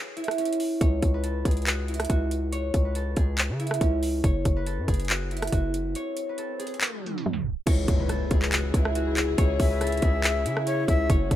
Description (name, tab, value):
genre	hip hop, trap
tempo	140 BPM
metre	4/4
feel	half-time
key	C# minor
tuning	A4 = 438 Hz
part	concert harp	melody	0.0-11.4 s	C#4 to C#5	-30 LUFS	equal	tape echo
part	trap drum kit	drums	0.2-11.4 s	crash cymbal, handclaps, hi-hat, kick drum, rim click	-25 LUFS	equal	none
part	hard-hitting 808-style bass	bass	0.8-11.4 s	F#1 to C#3	-27 LUFS	equal	none
part	swell and impact	sound effects	6.0-9.4 s	none	-36 LUFS	right 1 dB	none
part	dark studio string section	sustained chords	7.7-11.4 s	C#3 to G#4	-33 LUFS	left 4 dB	none
part	breathy bright jazz flute	second line	9.6-11.1 s	C#5 to E5	-29 LUFS	left 4 dB	tape echo
room	small room ambience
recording	rough home demo mix, tape stop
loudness	-23 LUFS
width	side -12 dB against mid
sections	0.0-7.7 A section; 7.7-11.4 B section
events	break 0.0-0.8, 6.0-7.7; swell 6.0-7.7; tape stop 6.8-7.7; impact 7.7-9.4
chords	0.0 N.C.; 0.8 C#madd11; 4.2 F#5; 7.7 C#m